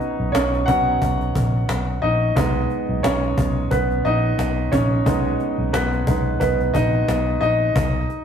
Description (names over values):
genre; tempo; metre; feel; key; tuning
piano-driven pop; 89 BPM; 4/4; swing 56% on 16ths; unclear; A4 = 442 Hz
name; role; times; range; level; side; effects
clear baby grand piano; accompaniment; 0.0-8.2 s; F#3 to F#5; -20 LUFS; equal; none
cajon; drums; 0.0-8.2 s; none; -25 LUFS; left 1 dB; none
vintage muted fingered electric bass; bass; 0.2-8.0 s; A#1 to B1; -23 LUFS; equal; none
room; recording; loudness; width
wet stone room reverb, RT60 1.1 s; rough rehearsal-room recording, tube saturation; -18 LUFS; side -8 dB against mid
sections
0.0-8.2 A section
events
grand piano solo 0.0-8.2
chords
0.0 Bsus2; 2.4 G#m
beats
0.35 1.02 1.69 | 2.37 3.04 3.71 4.39 | 5.06 5.74 6.41 7.08 | 7.76